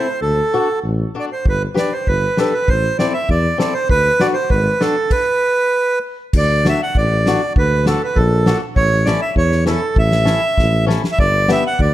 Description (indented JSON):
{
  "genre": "alpine folk, alpine dance band",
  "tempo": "99 BPM",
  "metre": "2/4",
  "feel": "rubato",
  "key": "D major from 6.3 s",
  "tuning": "A4 = 442 Hz",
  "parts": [
    { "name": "accordion", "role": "melody", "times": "0.0-11.9 s", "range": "A4 to F#5", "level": "-17 LUFS", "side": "right 2 dB", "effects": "none" },
    { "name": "fingerpicked swing-style acoustic guitar", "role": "accompaniment", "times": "0.0-11.6 s", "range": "B3 to B4", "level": "-23 LUFS", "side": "left 4 dB", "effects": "none" },
    { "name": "mellow tuba", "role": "bass", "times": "0.2-11.9 s", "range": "G1 to E2", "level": "-18 LUFS", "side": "equal", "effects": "none" },
    { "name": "loose indie drum kit", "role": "drums", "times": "1.5-11.9 s", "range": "crash cymbal, kick drum, snare drum", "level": "-19 LUFS", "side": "equal", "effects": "none" }
  ],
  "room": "light reverb",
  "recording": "none",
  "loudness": "-14 LUFS",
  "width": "side -14 dB against mid",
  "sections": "0.0-6.3 A section; 6.3-11.9 B section",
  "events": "drum fill 10.6-11.2",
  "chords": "0.2 D; 1.5 G; 2.7 Am; 3.9 D; 5.1 N.C.; 6.3 D; 8.8 A; 11.2 G"
}